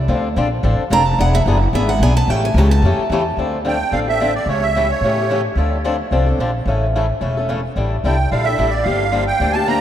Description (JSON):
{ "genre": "acoustic string swing (jazz manouche)", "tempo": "219 BPM", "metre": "4/4", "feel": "swing 56% on 8ths", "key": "D minor", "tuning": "A4 = 440 Hz", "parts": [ { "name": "upright bass", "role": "bass", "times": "0.0-9.8 s", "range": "E1 to A2", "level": "-18 LUFS", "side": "equal", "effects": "none" }, { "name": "picked swing-style acoustic guitar", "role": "accompaniment", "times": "0.1-9.8 s", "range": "C#3 to A4", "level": "-20 LUFS", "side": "left 2 dB", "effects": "none" }, { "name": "picked steel-string acoustic guitar", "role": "second line", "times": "0.9-3.0 s", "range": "E5 to Bb5", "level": "-22 LUFS", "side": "right 3 dB", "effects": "tape echo" }, { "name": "musette accordion", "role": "melody", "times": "3.7-5.4, 8.1-9.8 s", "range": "C#5 to Bb5", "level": "-20 LUFS", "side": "right 4 dB", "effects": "tape echo" } ], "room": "moderate cathedral reverb, RT60 4.9 s", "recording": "in a vast, echoing space", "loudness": "-15 LUFS", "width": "side -11 dB against mid", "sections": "0.0-3.4 A section; 3.4-9.8 B section", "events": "steel-string acoustic guitar solo 0.0-3.4", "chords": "0.1 Dm7; 1.2 E7; 2.3 A7; 3.4 Dm7; 4.5 A7/C#; 5.6 Dm7; 6.7 A; 7.8 A7sus4; 8.9 Gm7", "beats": "| 0.09 0.36 0.64 0.91 | 1.19 1.46 1.73 2.01 | 2.28 2.56 2.83 3.10 | 3.38 3.65 3.93 4.20 | 4.48 4.75 5.03 5.30 | 5.57 5.85 6.12 6.40 | 6.67 6.94 7.22 7.49 | 7.77 8.04 8.31 8.59 | 8.86 9.14 9.41 9.68" }